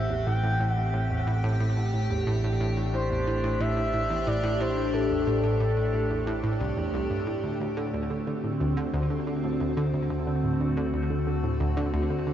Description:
ambient, sequencer-driven space music; 90 BPM; 4/4; straight; A4 = 439 Hz
expressive synth lead; melody; 0.0-6.9 s; A4 to G5; -32 LUFS; equal; chorus, shimmer reverb, tape echo
evolving wavetable pad; sustained chords; 0.0-12.3 s; A2 to G4; -29 LUFS; equal; phaser, built-in reverb, shimmer reverb
analog pluck; riff; 0.0-12.3 s; C2 to D3; -29 LUFS; right 1 dB; chorus, tape echo
analog drone; bass; 0.0-12.3 s; A1 to D2; -33 LUFS; equal; chorus
wet huge ambient reverb, RT60 7.7 s; nothing above 7.6 kHz; -24 LUFS; side -10 dB against mid
0.0-7.6 A section; 7.6-12.3 B section
0.0 Am7; 7.6 D7

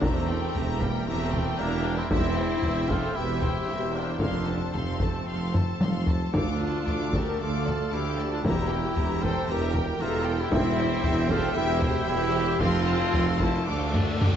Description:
cinematic, epic orchestral film score; 115 BPM; 4/4; straight; A4 = 440 Hz
warm studio violin section; melody; 0.0-14.4 s; E5 to D6; -36 LUFS; left 5 dB
warm symphonic violin section; second line; 0.0-14.4 s; G4 to A5; -36 LUFS; left 2 dB
rich studio viola section; accompaniment; 0.0-14.4 s; Bb3 to C5; -35 LUFS; right 1 dB
mellow French horn section; sustained chords; 0.0-14.4 s; Bb3 to C5; -34 LUFS; left 4 dB
warm woodwind section; sustained chords; 0.0-14.4 s; F3 to G5; -39 LUFS; equal
mellow trumpet; stabs; 0.0-14.4 s; G3 to A4; -34 LUFS; right 1 dB
rich symphonic cello section; bass; 0.0-14.4 s; D2 to F2; -32 LUFS; right 2 dB
rich symphonic double bass section; bass; 0.0-14.4 s; E1 to D2; -32 LUFS; right 4 dB
warm tuba; bass; 0.0-14.4 s; E1 to D2; -33 LUFS; right 3 dB
taiko ensemble; drums; 0.0-14.4 s; -28 LUFS; left 1 dB
impact and cymbal swell; sound effects; 0.0, 13.9-14.4 s; -41 LUFS; left 1 dB
moderate scoring stage reverb, RT60 1.7 s; nothing above 7.8 kHz; -24 LUFS; side -9 dB against mid
0.0-14.4 A section
drum fill 5.5-6.3, 14.0-14.4; cymbal swell 13.9-14.4
0.0 Edim; 2.1 C/E; 4.2 F; 6.3 Dm; 8.4 Edim; 10.5 C/E; 12.6 F; 13.7 Dm

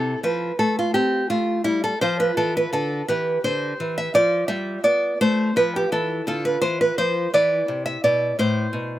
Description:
classical, baroque-style dance for nylon-string guitar; 56 BPM (dotted quarters); 6/8; rubato; A4 = 436 Hz
nylon-string guitar; solo; 0.0-9.0 s; A2 to E5; -19 LUFS; equal
little or no reverb; recorded outdoors, with no room sound; -19 LUFS; side -14 dB against mid
0.0-9.0 A section
0.0 C; 2.0 Dm13; 3.1 C; 4.1 F; 6.3 Dm; 7.3 E5; 8.4 Am

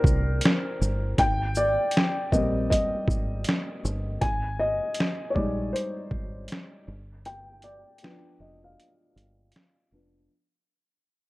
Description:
lo-fi hip hop; 79 BPM; 4/4; swing 62% on 16ths; A4 = 440 Hz
felt-muted upright piano; accompaniment; 0.0-10.3 s; E3 to Ab5; -27 LUFS; left 1 dB; cassette tape, low-pass filter
deep dub fingered electric bass; bass; 0.0-10.3 s; F1 to C2; -29 LUFS; equal
boom bap sampler-style drum kit; drums; 0.0-9.8 s; hi-hat, kick drum, shaker, snare drum; -26 LUFS; equal
light reverb; -24 LUFS; side -19 dB against mid
0.0-10.3 A section
fade-out 0.0-10.3; felt piano solo 0.0-10.3; filter sweep on felt piano 0.0-10.3; break 7.3-10.3
0.0 C7; 1.2 Abmaj7; 4.2 Abmaj9#11; 6.9 G7

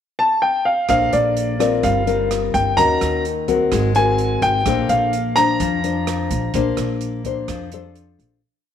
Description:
bossa nova; 127 BPM; 4/4; straight; Bb major; A4 = 440 Hz
warm grand piano; melody; 0.2-7.9 s; D5 to Bb5; -18 LUFS; equal
nylon-string guitar; accompaniment; 0.9-8.4 s; Eb3 to C5; -20 LUFS; left 6 dB
upright bass; bass; 0.9-8.4 s; G1 to F2; -24 LUFS; right 2 dB
open jazz drum kit; drums; 0.9-8.3 s; hi-hat, kick drum, rim click; -30 LUFS; right 9 dB
moderate echo chamber reverb, RT60 1.4 s, studio reverb; 1960s-style stereo with parts hard left and right; -16 LUFS; side -9 dB against mid
0.0-0.9 pickup bar; 0.9-8.4 A section
fade-out 6.5-8.4
0.0 N.C.; 0.9 Bbmaj9; 1.8 Gm7; 2.8 Ebm7; 3.7 Ab9; 4.7 Bbmaj9

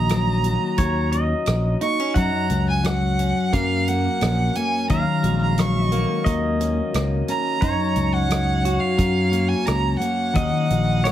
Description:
acoustic folk-pop ballad; 88 BPM; 4/4; straight; A4 = 440 Hz
rich violin; melody; 0.0-11.1 s; E#5 to C#6; -25 LUFS; right 5 dB
pedal steel guitar; second line; 0.0-11.1 s; C#5 to F#5; -30 LUFS; left 2 dB
fingerpicked steel-string acoustic guitar; accompaniment; 0.0-11.1 s; F#2 to A#4; -24 LUFS; left 4 dB
fretless electric bass; bass; 0.0-11.1 s; A#1 to F#2; -22 LUFS; equal
natural country drum kit; drums; 0.1-11.1 s; hi-hat, kick drum, rim click; -26 LUFS; equal
electric guitar through a small old amp; arpeggios; 1.8-11.1 s; G#3 to C#5; -28 LUFS; right 1 dB; harmonic tremolo
moderate studio reverb, RT60 0.6 s; heavily compressed radio sound; -18 LUFS; side -11 dB against mid
0.0-11.1 A section
0.0 D#m7; 7.6 F#maj7; 10.4 D#m7

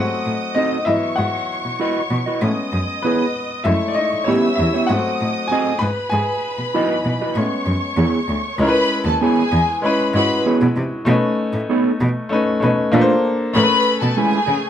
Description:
soul; 97 BPM; 4/4; straight; C# minor; A4 = 440 Hz
warm studio violin section; second line; 0.0-14.7 s; G#4 to E6; -22 LUFS; left 1 dB
clear grand piano; accompaniment; 0.0-14.7 s; E3 to B5; -20 LUFS; left 2 dB
warm cello; bass; 0.0-14.6 s; C#2 to C#3; -21 LUFS; equal
mellow electric guitar; riff; 0.6-14.4 s; G#3 to D#5; -20 LUFS; right 3 dB
moderate stone room reverb, RT60 1.0 s; band playing live in one room; -16 LUFS; side -10 dB against mid
0.0-8.6 A section; 8.6-14.7 B section
grand piano solo 0.0-8.6
0.0 G#7b9 (rootless); 0.9 C#m11/G#; 2.4 Amaj9 (rootless); 3.7 F#m9 (rootless); 4.3 A9; 4.9 G#7b9; 5.8 Emaj9/G#; 7.4 Amaj9 (rootless); 8.6 C#m7; 11.1 B9; 12.9 A#maj9; 13.5 Amaj9

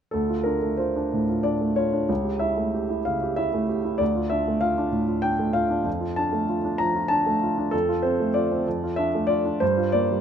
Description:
classical, romantic character piece for solo piano; 64 BPM (dotted quarters); 6/8; rubato; D minor; A4 = 438 Hz
warm baby grand piano; solo; 0.1-10.2 s; C#2 to Bb5; -21 LUFS; equal
light reverb; close, detailed microphones; -22 LUFS; side -8 dB against mid
0.1-10.2 A section
0.1 Dm; 2.1 A7/C#; 4.0 Dm; 5.9 Dm/F; 7.7 F; 8.7 Dm/F; 9.6 Gm7

